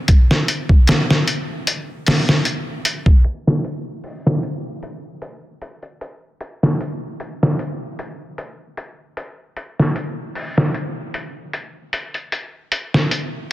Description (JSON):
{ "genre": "trip hop", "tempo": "76 BPM", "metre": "4/4", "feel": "swing 53% on 16ths", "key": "none", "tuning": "none", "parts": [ { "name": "trip hop sampler-style drum kit", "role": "drums", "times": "0.1-13.3 s", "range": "hi-hat, kick drum, snare drum", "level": "-17 LUFS", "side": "equal", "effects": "soft clipping on snare" } ], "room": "moderate echo chamber reverb, RT60 2.5 s", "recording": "dense, heavily limited modern master, low-pass filter", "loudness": "-17 LUFS", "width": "side -16 dB against mid", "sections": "0.0-3.2 A section; 3.2-13.5 B section", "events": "filter sweep 3.2-13.5", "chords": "none" }